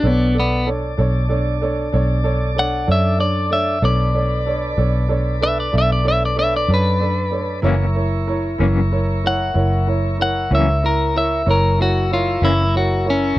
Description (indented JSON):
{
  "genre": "slow blues",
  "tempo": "63 BPM (dotted quarters)",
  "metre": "12/8",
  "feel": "straight",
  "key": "B minor",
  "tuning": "A4 = 442 Hz",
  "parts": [
    { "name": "clean electric guitar", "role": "melody", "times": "0.0-13.4 s", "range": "B3 to F#5", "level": "-19 LUFS", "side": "left 2 dB", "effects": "none" },
    { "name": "warm baby grand piano", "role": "accompaniment", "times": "0.0-13.3 s", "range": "D4 to E5", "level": "-24 LUFS", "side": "right 3 dB", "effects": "none" },
    { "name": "tonewheel organ", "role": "sustained chords", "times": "0.0-13.4 s", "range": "D4 to E5", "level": "-28 LUFS", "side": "equal", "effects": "slow rotary speaker" },
    { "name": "vintage muted fingered electric bass", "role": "bass", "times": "0.0-13.4 s", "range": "F#1 to F#2", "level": "-19 LUFS", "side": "equal", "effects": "none" },
    { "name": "semi-hollow electric guitar", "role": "accompaniment", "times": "7.6-12.6 s", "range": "F#2 to C#4", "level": "-21 LUFS", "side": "left 6 dB", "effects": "tremolo" }
  ],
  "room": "little or no reverb",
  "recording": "dry, close 1970s-style studio recording",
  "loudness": "-16 LUFS",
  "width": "side -16 dB against mid",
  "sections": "0.0-13.4 A section",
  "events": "clean electric guitar solo 0.0-13.4",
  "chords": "0.0 Bm7; 7.6 F#7"
}